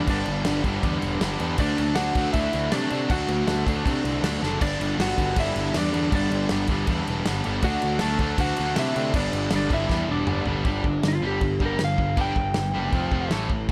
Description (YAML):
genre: punk rock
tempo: 159 BPM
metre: 4/4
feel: straight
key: G major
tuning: A4 = 440 Hz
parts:
  - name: lightly driven lead guitar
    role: melody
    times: 0.0-13.3 s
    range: D4 to A5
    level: -30 LUFS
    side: equal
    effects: none
  - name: crunchy overdriven guitar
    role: riff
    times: 0.0-13.7 s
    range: F2 to D4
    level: -33 LUFS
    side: equal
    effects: none
  - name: fuzz guitar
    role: riff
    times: 0.0-11.1 s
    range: G2 to D4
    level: -34 LUFS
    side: equal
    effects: none
  - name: tight distorted guitar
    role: riff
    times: 0.0-13.7 s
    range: G2 to A4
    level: -34 LUFS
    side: equal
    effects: distortion
  - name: fuzz picked electric bass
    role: bass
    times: 0.0-13.7 s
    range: E1 to C3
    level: -30 LUFS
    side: equal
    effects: overdrive
  - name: loose indie drum kit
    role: drums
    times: 0.1-13.7 s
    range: crash cymbal, kick drum, snare drum, toms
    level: -30 LUFS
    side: equal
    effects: none
room: little or no reverb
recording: none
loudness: -24 LUFS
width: mono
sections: 0.0-10.7 A section; 10.7-13.7 B section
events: drum fill 4.4, 9.9-10.7; lead electric guitar solo 10.7-13.7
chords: 0.0 G; 1.6 D; 4.6 G; 7.6 D; 9.1 G; 10.7 G5; 12.9 F5; 13.3 A5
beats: | 0.08 0.45 0.83 1.21 | 1.58 1.96 2.34 2.71 | 3.09 3.47 3.85 4.23 | 4.61 4.98 5.36 5.74 | 6.12 6.50 6.88 7.25 | 7.63 8.01 8.39 8.77 | 9.15 9.52 9.90 10.28 | 10.66 11.04 11.41 11.79 | 12.17 12.55 12.93 13.31 | 13.69